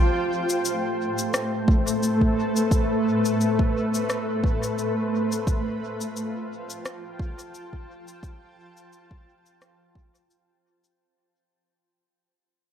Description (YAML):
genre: ambient dub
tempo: 87 BPM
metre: 4/4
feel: swing 55% on 16ths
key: unclear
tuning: A4 = 440 Hz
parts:
  - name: granular cloud pad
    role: sustained chords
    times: 0.0-11.0 s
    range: A3 to A5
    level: -24 LUFS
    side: equal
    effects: built-in reverb
  - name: electronic cabasa and rim click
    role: drums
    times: 0.5-11.0 s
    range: none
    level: -30 LUFS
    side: left 2 dB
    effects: studio reverb, dub echo
  - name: electronic kick drum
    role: drums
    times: 1.7-10.1 s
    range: none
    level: -22 LUFS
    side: equal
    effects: overdrive, studio reverb
room: moderate spring reverb, RT60 1.6 s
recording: echo-heavy mix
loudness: -22 LUFS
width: side -9 dB against mid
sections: 0.0-11.0 A section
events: fade-out 0.0-11.0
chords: 0.0 Amadd9; 5.5 Fadd9